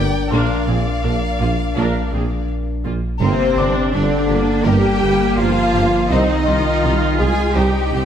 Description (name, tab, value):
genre	cinematic, hybrid orchestral and electronic film score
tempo	83 BPM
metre	4/4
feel	straight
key	G phrygian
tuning	A4 = 439 Hz
part	rich chamber violin section	melody	0.0-8.0 s	D4 to G5	-29 LUFS	left 3 dB	none
part	warm symphonic violin section	second line	0.0-8.1 s	C5 to Ab5	-25 LUFS	left 3 dB	none
part	rich symphonic viola section	accompaniment	0.0-8.1 s	Bb3 to Bb4	-23 LUFS	right 2 dB	none
part	mellow French horn section	sustained chords	0.0-8.1 s	C3 to Bb4	-22 LUFS	left 5 dB	none
part	mellow tuba	bass	0.0-8.0 s	G1 to C2	-24 LUFS	right 3 dB	none
part	rich symphonic cello section	bass	0.0-8.1 s	Bb2 to Ab4	-22 LUFS	right 2 dB	none
part	rich symphonic double bass section	bass	0.0-8.0 s	G1 to C2	-23 LUFS	right 3 dB	none
part	warm sub bass	bass	0.0-8.1 s	G1 to C2	-23 LUFS	equal	none
part	felt-muted upright piano	texture	0.0-8.1 s	D5 to D6	-32 LUFS	left 3 dB	none
room	moderate scoring stage reverb, RT60 1.6 s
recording	none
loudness	-15 LUFS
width	side -9 dB against mid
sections	0.0-3.2 A section; 3.2-8.1 B section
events	none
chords	0.3 Bb; 3.2 Gm; 6.1 Cm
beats	| 0.32 1.04 1.76 2.48 | 3.21 3.93 4.65 5.38 | 6.10 6.82 7.54